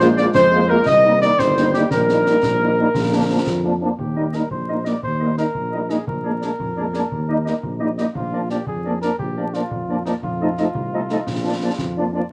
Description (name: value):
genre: military-style march for wind band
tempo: 115 BPM (dotted quarters)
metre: 6/8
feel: straight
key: Eb major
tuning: A4 = 440 Hz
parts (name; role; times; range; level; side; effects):
- mellow cornet; melody; 0.0-12.1 s; Eb4 to Eb5; -25 LUFS; equal; none
- warm woodwind section; second line; 0.0-12.2 s; F4 to Eb5; -24 LUFS; equal; none
- mellow French horn section; accompaniment; 0.0-12.2 s; F3 to F4; -24 LUFS; equal; none
- warm trombone section; sustained chords; 0.0-3.8 s; D3 to Ab3; -29 LUFS; equal; none
- mellow tuba; bass; 0.0-12.2 s; G1 to F2; -27 LUFS; equal; none
- concert snare drum and concert bass drum; drums; 0.0-11.9 s; none; -31 LUFS; equal; none
room: moderate plate reverb, RT60 1.7 s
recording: vinyl crackle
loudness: -20 LUFS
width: mono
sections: 0.0-4.0 A section; 4.0-12.3 B section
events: none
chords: 0.0 Bb5; 0.9 Cm7; 1.9 Eb/Bb; 3.0 Bb; 4.0 Eb; 6.1 Bb7; 7.1 Eb; 8.2 Bb; 10.2 F7; 11.3 Bb